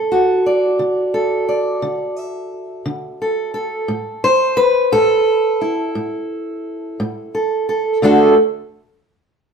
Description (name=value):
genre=acoustic country blues, solo or duo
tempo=58 BPM (dotted quarters)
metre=12/8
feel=straight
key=D major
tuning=A4 = 439 Hz
part: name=fingerpicked acoustic archtop guitar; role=solo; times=0.0-8.3 s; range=A2 to E5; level=-15 LUFS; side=right 1 dB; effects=none
room=moderate studio reverb, RT60 0.7 s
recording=band playing live in one room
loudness=-15 LUFS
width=side -6 dB against mid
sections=0.0-8.0 A section; 8.0-9.5 B section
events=none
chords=0.0 D; 3.9 A5; 8.0 D